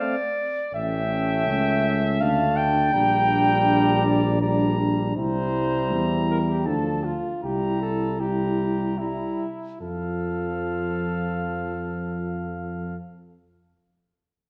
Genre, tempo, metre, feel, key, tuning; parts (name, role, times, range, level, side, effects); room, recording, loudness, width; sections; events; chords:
classical, brass quintet; 72-82 BPM; 3/4; rubato; F major; A4 = 440 Hz
warm trumpet; melody; 0.0-13.0 s; F5 to Bb5; -34 LUFS; equal
warm flugelhorn; second line; 0.0-13.0 s; E4 to G5; -29 LUFS; equal
clear trombone; accompaniment; 0.0-13.0 s; F3 to A3; -33 LUFS; equal
warm French horn; accompaniment; 0.0-13.0 s; C4 to F4; -32 LUFS; equal
dark tuba; bass; 0.7-13.0 s; A1 to F2; -29 LUFS; equal
wet recital hall reverb, RT60 1.5 s; -24 LUFS; mono
0.0-9.8 A section; 9.8-12.2 B section
slowing down 4.0-9.8
0.0 F/A; 0.7 A7; 2.2 Dm; 2.9 Gm/Bb; 5.2 C7; 6.7 Dm; 7.4 C7; 9.8 F